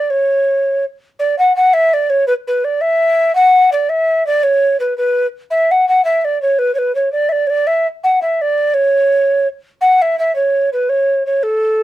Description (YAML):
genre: celtic folk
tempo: 112 BPM (dotted quarters)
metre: 6/8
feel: straight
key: unclear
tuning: A4 = 438 Hz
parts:
  - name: mellow hollow tenor recorder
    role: solo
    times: 0.0-11.8 s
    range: A4 to F#5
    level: -12 LUFS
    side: equal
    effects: none
room: light reverb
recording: close, detailed microphones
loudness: -12 LUFS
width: side -14 dB against mid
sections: 0.0-1.2 A section; 1.2-9.8 A section; 9.8-11.8 B section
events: none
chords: none